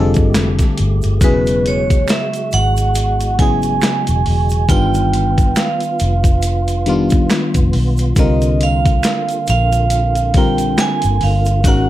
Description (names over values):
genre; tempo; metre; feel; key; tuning
R&B, neo-soul; 69 BPM; 4/4; swing 57% on 16ths; unclear; A4 = 439 Hz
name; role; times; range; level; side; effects
vibraphone with hard mallets; melody; 0.0-11.9 s; B4 to G#5; -19 LUFS; right 4 dB; slapback echo
FM electric piano; accompaniment; 0.0-11.9 s; Db3 to Bb4; -19 LUFS; left 3 dB; chorus
percussive tonewheel organ; sustained chords; 0.0-11.9 s; Cb3 to G4; -27 LUFS; right 2 dB; slow rotary speaker, overdrive, chorus vibrato
vintage muted fingered electric bass; bass; 0.0-11.9 s; E1 to C2; -17 LUFS; equal; none
dusty soul sampler-style drum kit; drums; 0.1-11.9 s; hi-hat, kick drum, snare drum; -16 LUFS; equal; none
tube shaker and finger snaps; percussion; 0.1-11.9 s; none; -29 LUFS; right 7 dB; none
room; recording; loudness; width
little or no reverb; none; -12 LUFS; side -14 dB against mid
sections
0.0-11.9 A section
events
none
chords
0.0 F9; 1.2 Eadd9; 4.7 G7b13; 8.2 C9sus4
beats
0.34 | 1.21 2.08 2.95 3.82 | 4.69 5.56 6.43 7.30 | 8.17 9.04 9.91 10.78 | 11.65